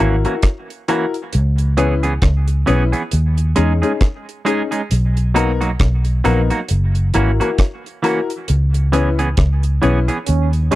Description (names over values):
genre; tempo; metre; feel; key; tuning
roots reggae; 67 BPM; 4/4; swing 58% on 16ths; unclear; A4 = 441 Hz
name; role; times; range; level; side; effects
clean electric guitar; accompaniment; 0.0-10.8 s; E3 to G#4; -21 LUFS; right 3 dB; tape echo
warm upright piano; stabs; 0.0-10.8 s; B3 to B4; -20 LUFS; left 6 dB; tube saturation
vintage muted fingered electric bass; bass; 0.0-10.7 s; F#1 to E2; -15 LUFS; equal; none
deep reggae drum kit; drums; 0.2-10.8 s; hi-hat, kick drum, rim click; -19 LUFS; equal; none
bright trombone; second line; 10.3-10.8 s; C#4; -22 LUFS; right 11 dB; none
room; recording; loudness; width
little or no reverb; dry, close 1970s-style studio recording; -15 LUFS; side -16 dB against mid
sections
0.0-10.8 A section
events
band accent 8.5-10.8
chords
0.0 F#7; 1.3 C#m7; 3.1 D#7sus4; 4.9 Bmaj7; 6.7 F#7; 8.5 C#m7